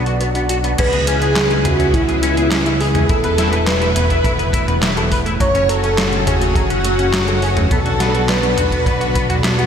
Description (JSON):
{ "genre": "synthwave", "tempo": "104 BPM", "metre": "4/4", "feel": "straight", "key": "unclear", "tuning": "A4 = 439 Hz", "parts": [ { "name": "warm velvety synth lead", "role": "melody", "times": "0.0-9.4 s", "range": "E4 to C#5", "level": "-21 LUFS", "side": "equal", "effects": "chorus, tape echo" }, { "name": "lush unison pad", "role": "sustained chords", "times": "0.0-9.7 s", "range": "A2 to F#4", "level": "-23 LUFS", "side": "equal", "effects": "chorus" }, { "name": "soft round pluck", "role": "arpeggios", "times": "0.0-9.7 s", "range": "G#3 to D5", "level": "-27 LUFS", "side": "left 1 dB", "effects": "chorus, vintage 12-bit sampler grit, tape echo" }, { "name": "clean electric guitar", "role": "riff", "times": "0.0-9.7 s", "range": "F#3 to B4", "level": "-25 LUFS", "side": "left 3 dB", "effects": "ensemble chorus, tape echo, slapback echo" }, { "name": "fat analog bass", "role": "bass", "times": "0.0-9.7 s", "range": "E1 to C#2", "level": "-20 LUFS", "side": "equal", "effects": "tube saturation, sidechain pumping" }, { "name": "detuned 8-bit digital drum machine", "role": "drums", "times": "0.1-9.7 s", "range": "crash cymbal, handclaps, hi-hat, snare drum, toms", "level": "-20 LUFS", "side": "equal", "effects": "none" }, { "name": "string machine, violins", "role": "second line", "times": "0.8-9.4 s", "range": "E4 to C#5", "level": "-24 LUFS", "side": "equal", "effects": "ensemble chorus, slapback echo" }, { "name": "kick drum", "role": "drums", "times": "0.8-9.3 s", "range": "none", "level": "-21 LUFS", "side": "equal", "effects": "none" } ], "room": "moderate lush hall reverb, RT60 2.5 s", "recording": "big arena sound", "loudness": "-14 LUFS", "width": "side -8 dB against mid", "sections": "0.8-9.7 A section", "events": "none", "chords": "0.0 Bm; 0.8 C#m7; 3.1 Esus4; 5.4 F#m; 7.7 Bm", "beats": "0.21 | 0.79 1.36 1.94 2.52 | 3.09 3.67 4.25 4.83 | 5.40 5.98 6.55 7.13 | 7.71 8.29 8.86 9.44" }